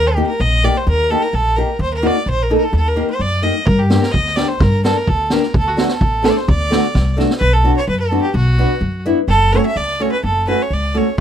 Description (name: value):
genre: klezmer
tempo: 128 BPM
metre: 2/4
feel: straight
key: D phrygian dominant, B minor from 7.4 s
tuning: A4 = 440 Hz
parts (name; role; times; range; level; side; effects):
- clear fiddle; melody; 0.0-11.2 s; F#4 to E5; -18 LUFS; right 1 dB; none
- upright bass; bass; 0.0-11.2 s; F#1 to G2; -17 LUFS; equal; none
- nylon-string guitar; accompaniment; 0.2-11.1 s; A3 to Bb4; -18 LUFS; left 1 dB; none
- street-band drum kit; drums; 3.7-7.4, 11.2 s; kick drum, snare drum; -18 LUFS; right 1 dB; none
room: light reverb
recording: close, detailed microphones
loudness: -13 LUFS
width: side -9 dB against mid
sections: 0.0-7.4 A section; 7.4-11.2 B section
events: drum fill 7.0-7.4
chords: 0.0 Eb; 3.7 Gm; 5.5 D; 7.4 Bm; 9.3 F#m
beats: 0.40 | 0.86 1.33 | 1.80 2.27 | 2.73 3.20 | 3.67 4.14 | 4.61 5.08 | 5.54 6.01 | 6.48 6.95 | 7.42 7.89 | 8.36 8.83 | 9.30 9.77 | 10.24 10.71 | 11.18